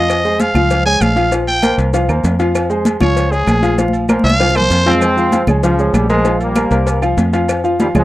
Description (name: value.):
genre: latin, salsa.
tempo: 195 BPM.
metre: 4/4.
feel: straight.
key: F minor.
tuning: A4 = 440 Hz.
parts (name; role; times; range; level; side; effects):
growling trumpet; melody; 0.0-4.9 s; Ab4 to Ab5; -16 LUFS; equal; none.
clear concert grand piano; accompaniment; 0.0-8.0 s; F3 to F5; -17 LUFS; equal; none.
fingered electric bass; bass; 0.0-8.0 s; Bb1 to F2; -17 LUFS; equal; none.
agogo bells and timbales; percussion; 0.1-8.0 s; none; -26 LUFS; right 3 dB; none.
claves; percussion; 0.1-8.0 s; none; -28 LUFS; right 4 dB; none.
congas; percussion; 0.1-8.0 s; none; -19 LUFS; equal; none.
cowbell; percussion; 0.1-8.0 s; none; -24 LUFS; left 5 dB; none.
maracas; percussion; 0.1-8.0 s; none; -34 LUFS; right 4 dB; none.
bright trombone section; melody; 4.9-8.0 s; Db3 to C4; -16 LUFS; equal; none.
room: light reverb.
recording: dry, close 1970s-style studio recording.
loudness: -11 LUFS.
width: side -16 dB against mid.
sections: 0.0-5.0 A section; 5.0-8.0 B section.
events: trumpet solo 0.0-5.0; drum fill 3.8-5.0.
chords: 0.1 Fm7; 0.7 Db; 1.3 Bbsus2; 1.9 C7sus4; 2.5 Fm; 3.2 Db; 3.8 Bbsus2; 4.4 C7sus4; 5.0 Fm; 5.6 Db; 6.3 Bbsus2; 6.9 C7sus4; 7.5 Fm.